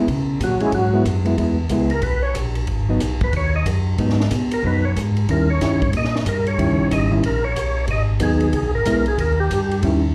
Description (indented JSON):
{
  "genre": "soul jazz organ trio",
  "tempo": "184 BPM",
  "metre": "4/4",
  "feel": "swing 63% on 8ths",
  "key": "G# minor",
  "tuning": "A4 = 440 Hz",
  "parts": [
    { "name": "hollow-body jazz guitar", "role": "accompaniment", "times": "0.0-10.0 s", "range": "D#3 to E4", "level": "-23 LUFS", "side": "equal", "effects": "slapback echo" },
    { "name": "mellow tonewheel organ", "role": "bass", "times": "0.0-10.1 s", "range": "G#1 to C#3", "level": "-23 LUFS", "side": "equal", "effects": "slow rotary speaker" },
    { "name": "compact cocktail drum kit", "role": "drums", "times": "0.1-9.9 s", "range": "hi-hat, kick drum, ride cymbal, snare drum", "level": "-29 LUFS", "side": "equal", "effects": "none" },
    { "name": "percussive tonewheel organ", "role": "melody", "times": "0.4-9.8 s", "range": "F#3 to D#5", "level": "-25 LUFS", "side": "equal", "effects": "slow rotary speaker, overdrive, chorus vibrato, slapback echo" }
  ],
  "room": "small room ambience",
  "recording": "live gig heard through the venue's PA, club reverb",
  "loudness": "-20 LUFS",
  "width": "mono",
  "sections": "0.0-10.1 A section",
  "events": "tonewheel organ solo 0.0-10.1",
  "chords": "0.1 C#m7; 2.7 G#m7; 5.3 D#7b9; 7.9 G#m7; 8.5 C#m7; 9.2 D#7b9"
}